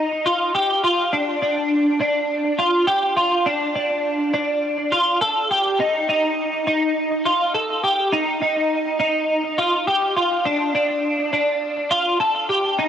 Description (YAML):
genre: dream pop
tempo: 103 BPM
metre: 4/4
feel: straight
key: unclear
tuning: A4 = 440 Hz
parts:
  - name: twelve-string electric guitar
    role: solo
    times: 0.0-12.9 s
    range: D4 to A4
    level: -18 LUFS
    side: equal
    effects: ensemble chorus, tape echo
room: moderate shimmer reverb, RT60 5.5 s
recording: dry, gritty hardware recording, cassette tape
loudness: -18 LUFS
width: side -9 dB against mid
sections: 0.0-12.9 A section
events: none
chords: none